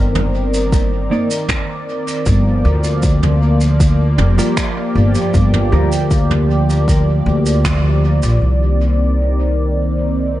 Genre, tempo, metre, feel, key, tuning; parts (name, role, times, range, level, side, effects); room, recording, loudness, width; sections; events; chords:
ambient dub; 78 BPM; 4/4; straight; C minor; A4 = 439 Hz
warm analog pad; sustained chords; 0.0-10.4 s; Eb3 to D5; -19 LUFS; equal; chorus
upright bass; bass; 0.0-10.4 s; F1 to D2; -14 LUFS; equal
soft brush drum kit; drums; 0.2-8.4 s; finger snaps, shaker, toms; -24 LUFS; right 1 dB; dub echo
electronic kick drum; drums; 0.7-7.8 s; -16 LUFS; equal; overdrive
mellow electric guitar; stabs; 1.1-5.9 s; G3 to D5; -25 LUFS; right 2 dB; wide subtle chorus, low-pass filter, dub echo
studio reverb; dark, warm production, nothing above 10.6 kHz; -13 LUFS; side -14 dB against mid
0.0-8.4 A section; 8.4-10.4 B section
band accent 7.6-8.0
0.0 Cm9; 2.3 Gm7; 8.4 Cm9